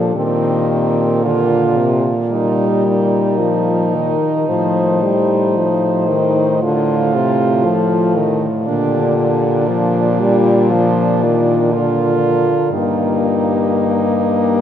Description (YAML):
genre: classical, lyrical piece for horn quartet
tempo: 54-61 BPM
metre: 4/4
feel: rubato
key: Bb major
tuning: A4 = 441 Hz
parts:
  - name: warm French horn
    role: melody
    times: 0.0-14.6 s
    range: F4 to C5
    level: -22 LUFS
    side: left 6 dB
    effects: none
  - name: mellow French horn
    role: accompaniment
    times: 0.0-14.6 s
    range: C3 to Bb3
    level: -17 LUFS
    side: left 2 dB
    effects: none
  - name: mellow French horn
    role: bass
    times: 0.0-14.6 s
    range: G2 to Bb2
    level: -18 LUFS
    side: right 1 dB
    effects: none
  - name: clear French horn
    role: second line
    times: 0.2-14.6 s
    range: C4 to F4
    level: -20 LUFS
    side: right 5 dB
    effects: none
room: wet cathedral reverb, RT60 7.2 s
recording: none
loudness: -13 LUFS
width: side -9 dB against mid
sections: 0.0-14.6 A section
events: none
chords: 0.1 Cm7/Bb; 4.5 F7/A; 8.7 Bb; 12.7 Eb/G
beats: | 0.15 1.24 2.31 3.40 | 4.48 5.57 6.61 7.64 | 8.66 9.67 10.71 11.72 | 12.72 13.78